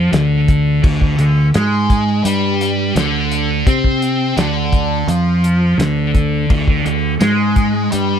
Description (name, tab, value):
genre	psychedelic rock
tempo	85 BPM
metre	4/4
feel	straight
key	unclear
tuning	A4 = 440 Hz
part	thick fuzz guitar	riff	0.0-8.2 s	D3 to C4	-15 LUFS	equal	distortion, phaser
part	fingered electric bass	bass	0.0-8.2 s	D2 to C3	-20 LUFS	equal	none
part	cloth-damped thuddy drum kit	drums	0.1-8.1 s	crash cymbal, hi-hat, kick drum, snare drum	-17 LUFS	equal	none
room	small room ambience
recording	none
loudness	-13 LUFS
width	side -8 dB against mid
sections	0.0-8.2 A section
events	none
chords	0.0 Dm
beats	0.13 | 0.84 1.54 2.25 2.95 | 3.66 4.36 5.07 5.78 | 6.49 7.20 7.91